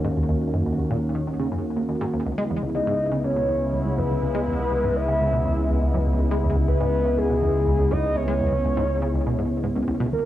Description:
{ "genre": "ambient, sequencer-driven space music", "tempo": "122 BPM", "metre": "4/4", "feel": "straight", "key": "C# dorian", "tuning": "A4 = 435 Hz", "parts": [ { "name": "sweeping resonant pad", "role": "sustained chords", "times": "0.0-10.3 s", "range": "A#2 to F#4", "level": "-26 LUFS", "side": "equal", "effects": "wide subtle chorus, cassette tape" }, { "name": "tight sequenced synth", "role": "riff", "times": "0.0-10.2 s", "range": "C#2 to G#3", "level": "-27 LUFS", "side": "equal", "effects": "chorus, phaser, cassette tape, tape echo" }, { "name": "analog drone", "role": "bass", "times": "0.0-10.3 s", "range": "C#2 to D#2", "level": "-26 LUFS", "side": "equal", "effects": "chorus" }, { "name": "soft octave-layered synth lead", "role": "melody", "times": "2.7-10.3 s", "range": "G#4 to E5", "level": "-25 LUFS", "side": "equal", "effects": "chorus, phaser, tape echo" } ], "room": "wet studio reverb, RT60 0.5 s", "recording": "home recording on cassette", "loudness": "-21 LUFS", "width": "side -13 dB against mid", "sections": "0.0-10.1 A section", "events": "none", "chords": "0.0 D#m7; 2.3 C#m7" }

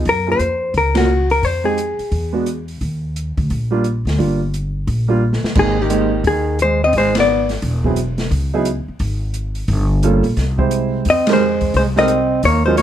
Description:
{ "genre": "jazz, small-group swing and bop", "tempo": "174 BPM", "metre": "4/4", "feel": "swing 63% on 8ths", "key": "Eb major, Ab major from 5.6 s", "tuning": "A4 = 438 Hz", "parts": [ { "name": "warm grand piano", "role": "accompaniment", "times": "0.0-12.8 s", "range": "Gb3 to C5", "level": "-19 LUFS", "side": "right 4 dB", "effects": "none" }, { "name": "hollow-body jazz guitar", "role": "melody", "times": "0.1-2.6, 5.6-7.5, 11.1-12.8 s", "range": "Gb4 to Eb5", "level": "-17 LUFS", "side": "left 3 dB", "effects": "plate reverb" }, { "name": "upright bass", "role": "bass", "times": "0.1-12.8 s", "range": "E1 to Gb2", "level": "-19 LUFS", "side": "equal", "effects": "none" }, { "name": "open jazz drum kit", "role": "drums", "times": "0.1-12.8 s", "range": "crash cymbal, hi-hat, kick drum, ride cymbal, snare drum", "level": "-24 LUFS", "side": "equal", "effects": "none" }, { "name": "growling trombone", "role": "second line", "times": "5.6-7.5, 11.1-12.8 s", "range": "Eb3 to C4", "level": "-20 LUFS", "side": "right 4 dB", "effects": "none" } ], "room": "moderate studio ambience, RT60 0.4 s", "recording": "none", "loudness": "-15 LUFS", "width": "side -10 dB against mid", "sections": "0.0-5.6 A section; 5.6-12.8 B section", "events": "band accent 0.9, 7.1, 11.2; drum fill 5.2-5.6", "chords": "0.1 Gbmaj7; 1.4 Fm7; 2.1 E9; 2.8 Ebmaj7; 5.6 Abmaj9; 6.9 Abm(b13); 8.3 Db5; 9.7 Gm7b5; 10.4 C; 11.1 Fm11" }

